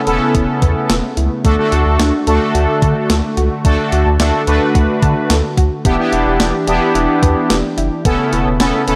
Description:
synth-pop; 109 BPM; 4/4; straight; D major; A4 = 441 Hz
brassy analog pad; sustained chords; 0.0-9.0 s; C#3 to G4; -24 LUFS; equal; chorus
analog synth brass; accompaniment; 0.1-9.0 s; A3 to B4; -19 LUFS; equal; chorus
soft round pluck; arpeggios; 0.1-9.0 s; A3 to A5; -24 LUFS; equal; chorus, tape echo
round analog bass; bass; 0.1-9.0 s; E1 to D3; -19 LUFS; equal
clean 12-bit digital drum machine; drums; 0.1-9.0 s; hi-hat, kick drum, snare drum; -20 LUFS; equal; overdrive
moderate scoring stage reverb, RT60 1.9 s; -14 LUFS; mono
0.0-9.0 A section
0.0 Aadd9/E; 1.4 D; 5.8 Em7; 8.1 Aadd9/E
0.35 0.90 | 1.45 2.00 2.55 3.10 | 3.65 4.20 4.75 5.30 | 5.85 6.40 6.95 7.50 | 8.05 8.60

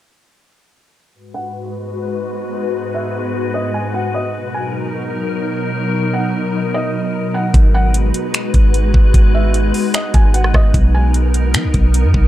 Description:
hip hop, atmospheric cloud-rap; 150 BPM; 4/4; half-time; G# minor; A4 = 440 Hz
glassy FM pad; sustained chords; 1.4-12.3 s; G#2 to B4; -20 LUFS; left 1 dB; ensemble chorus, built-in reverb, sidechain pumping, low-pass filter
wind-like tuned noise texture; texture; 1.9-12.3 s; B3 to F#5; -30 LUFS; right 3 dB; built-in reverb
felt-muted upright piano; melody; 1.3-11.1 s; D#5 to G#5; -24 LUFS; right 1 dB; low-pass filter, digital delay
soft 808-style bass; bass; 7.5-12.3 s; G#1 to F#3; -13 LUFS; equal
smooth R&B drum kit; drums; 7.5-12.2 s; finger snaps, hi-hat, kick drum, rim click; -14 LUFS; equal
little or no reverb; dark, warm production; -14 LUFS; side -14 dB against mid
1.1-7.5 A section; 7.5-12.3 B section
filter sweep 1.1-7.5
1.1 G#m7; 4.3 Bmaj7; 7.5 G#m7; 10.7 Bmaj7
| 1.14 1.54 1.94 2.34 | 2.74 3.14 3.54 3.94 | 4.34 4.74 5.14 5.54 | 5.94 6.34 6.74 7.14 | 7.54 7.94 8.34 8.74 | 9.14 9.54 9.94 10.34 | 10.74 11.14 11.54 11.94

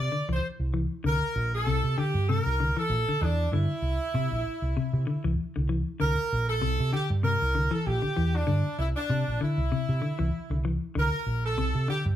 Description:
afrobeat; 97 BPM; 4/4; swing 55% on 16ths; C mixolydian; A4 = 440 Hz
brilliant horn section; melody; 0.0-12.0 s; D4 to D5; -30 LUFS; right 1 dB
fingered electric bass; bass; 0.0-12.2 s; Bb1 to C3; -28 LUFS; right 1 dB
semi-hollow electric guitar; arpeggios; 0.1-12.1 s; C3 to E3; -30 LUFS; left 4 dB
light reverb; band playing live in one room; -25 LUFS; side -11 dB against mid
0.0-12.2 A section
0.0 C
0.42 | 1.04 1.66 2.28 2.90 | 3.52 4.14 4.76 5.38 | 6.00 6.62 7.24 7.86 | 8.48 9.10 9.72 10.34 | 10.96 11.58

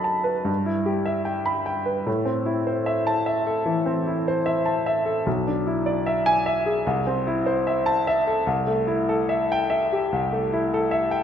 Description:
classical, romantic character piece for solo piano; 75 BPM; 4/4; rubato; A4 = 441 Hz
clear grand piano; solo; 0.0-11.2 s; B1 to B5; -21 LUFS; equal
moderate concert hall reverb, RT60 2.3 s; -21 LUFS; side -8 dB against mid
0.0-11.2 A section
0.5 Em/G; 2.1 Am; 5.3 E7/B; 6.8 Am/C; 8.5 Am7/C
0.48 1.28 | 2.07 2.86 3.66 4.47 | 5.26 6.05 6.84 7.66 | 8.46 9.26 10.09 10.90

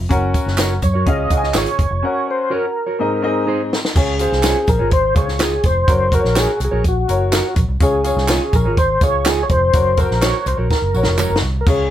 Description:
uptempo 1960s-style soul; 125 BPM; 4/4; straight; Db major; A4 = 440 Hz
vintage muted fingered electric bass; bass; 0.0-11.9 s; F1 to Gb2; -20 LUFS; equal
clear grand piano; accompaniment; 0.1-11.9 s; Ab2 to Ab5; -22 LUFS; left 3 dB
compact cocktail drum kit; drums; 0.1-11.8 s; crash cymbal, hi-hat, kick drum, snare drum, toms; -18 LUFS; equal
tambourine and handclaps; percussion; 0.1-11.8 s; -27 LUFS; right 3 dB
mellow electric guitar; stabs; 0.6-11.3 s; Eb4 to Db5; -24 LUFS; right 4 dB
mellow tonewheel organ; melody; 0.8-11.9 s; Gb4 to Eb5; -19 LUFS; equal; overdrive, chorus vibrato, slow rotary speaker
light reverb; band playing live in one room; -14 LUFS; side -11 dB against mid
0.0-4.0 A section; 4.0-11.9 B section
break 2.0-4.0; drum fill 3.0-4.0, 10.7-11.7
0.1 Gb; 1.1 Db; 2.0 Gb; 3.0 Ab; 4.0 Db; 5.9 Gb; 7.8 Db; 9.7 Gb
| 0.11 0.59 1.07 1.55 | 2.03 2.51 2.99 3.47 | 3.95 4.43 4.92 5.40 | 5.88 6.36 6.84 7.33 | 7.81 8.29 8.77 9.25 | 9.74 10.22 10.70 11.18 | 11.66

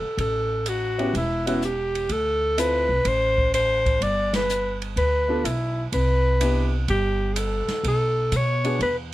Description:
jazz, small-group swing and bop; 125 BPM; 4/4; swing 68% on 8ths; A4 = 440 Hz
warm alto saxophone; melody; 0.0-9.0 s; E4 to D5; -23 LUFS; left 1 dB
upright bass; bass; 0.0-9.1 s; E1 to B2; -25 LUFS; equal
open jazz drum kit; drums; 0.2-9.0 s; hi-hat, kick drum, ride cymbal, snare drum; -31 LUFS; right 1 dB
warm baby grand piano; accompaniment; 1.0-8.8 s; B3 to A4; -27 LUFS; equal
little or no reverb; -20 LUFS; side -16 dB against mid
0.0-9.1 A section
band accent 4.3
0.2 A7; 2.1 Dm7; 4.0 G; 5.9 Cmaj9; 7.8 Bm7
| 0.19 0.67 1.15 1.62 | 2.10 2.58 3.06 3.54 | 4.01 4.49 4.97 5.45 | 5.93 6.41 6.89 7.36 | 7.84 8.32 8.80

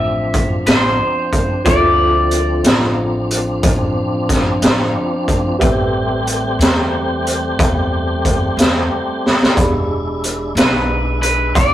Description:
slow blues; 61 BPM (dotted quarters); 12/8; straight; A minor; A4 = 440 Hz
electric guitar through a small old amp; melody; 0.0-2.9, 10.6-11.7 s; B4 to E5; -17 LUFS; left 1 dB
tine electric piano; accompaniment; 0.0-11.7 s; F4 to B5; -24 LUFS; equal; medium tremolo
tonewheel organ; sustained chords; 0.0-11.7 s; F3 to G4; -21 LUFS; equal; slow rotary speaker, overdrive, chorus vibrato
upright bass; bass; 0.0-11.7 s; E1 to E2; -22 LUFS; equal
raw garage drum kit; drums; 0.3-11.7 s; hi-hat, kick drum, snare drum; -16 LUFS; equal
moderate stone room reverb, RT60 1.3 s; rough rehearsal-room recording, warm saturation; -13 LUFS; side -12 dB against mid
0.0-11.7 A section
drum fill 9.2-9.6
0.0 Dm9; 5.6 Am9; 9.6 E7#9
0.67 | 1.65 2.64 3.63 4.62 | 5.61 6.60 7.59 8.58 | 9.57 10.56 11.55

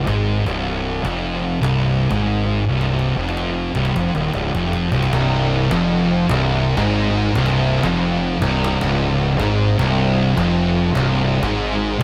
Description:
stoner and doom metal; 103 BPM; 4/4; swing 64% on 8ths; A4 = 437 Hz
thick fuzz guitar; riff; 0.0-12.0 s; C2 to Ab2; -24 LUFS; equal; distortion
thick fuzz guitar; riff; 0.0-12.0 s; C2 to Ab2; -23 LUFS; equal; distortion
fuzz fingered electric bass; bass; 0.0-12.0 s; C1 to Ab1; -26 LUFS; equal; overdrive
cajon; drums; 0.1-12.0 s; -31 LUFS; equal
sludgy distorted guitar; riff; 5.1-12.0 s; C2 to Ab2; -25 LUFS; equal; overdrive
light reverb, digital ambience; -19 LUFS; mono
0.0-5.1 A section; 5.1-12.0 B section
drum fill 2.8-5.1
| 0.46 1.05 1.63 2.21 | 2.79 3.38 3.96 4.54 | 5.13 5.71 6.29 6.87 | 7.45 8.04 8.62 9.20 | 9.78 10.36 10.94 11.52

